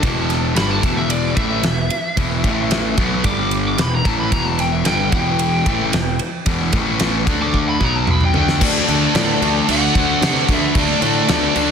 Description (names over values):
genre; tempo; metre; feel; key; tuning
hard rock; 112 BPM; 4/4; straight; unclear; A4 = 442 Hz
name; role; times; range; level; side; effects
lead guitar through a small cranked amp; melody; 0.0-11.7 s; D5 to D6; -23 LUFS; left 1 dB; overdrive
crunchy overdriven guitar; riff; 0.0-11.7 s; E2 to D4; -22 LUFS; left 11 dB; none
sludgy distorted guitar; riff; 0.0-11.7 s; E2 to D4; -23 LUFS; right 10 dB; overdrive
fuzz picked electric bass; bass; 0.0-11.7 s; E1 to C3; -23 LUFS; equal; overdrive
big rock drum kit; drums; 0.0-11.7 s; crash cymbal, kick drum, ride cymbal, snare drum, toms; -20 LUFS; equal; none
octave-fuzz lead guitar; second line; 8.6-11.7 s; A4 to D5; -26 LUFS; right 1 dB; distortion
sludgy distorted guitar; riff; 8.6-11.7 s; D3 to D4; -24 LUFS; left 2 dB; overdrive
room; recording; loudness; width
moderate large studio reverb, RT60 0.9 s, small room ambience; dense, heavily limited modern master; -15 LUFS; side -7 dB against mid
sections
0.0-8.6 A section; 8.6-11.7 B section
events
lead electric guitar solo 0.0-8.6; drum fill 7.5-8.6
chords
0.0 Em; 2.5 A5; 3.0 B5; 3.3 G5; 3.8 Em; 6.7 A5; 7.3 D5; 7.8 B5; 8.3 Dsus4; 8.6 D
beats
| 0.03 0.57 1.11 1.65 | 2.18 2.72 3.26 3.79 | 4.33 4.87 5.40 5.94 | 6.47 7.01 7.54 8.08 | 8.61 9.15 9.68 10.22 | 10.75 11.28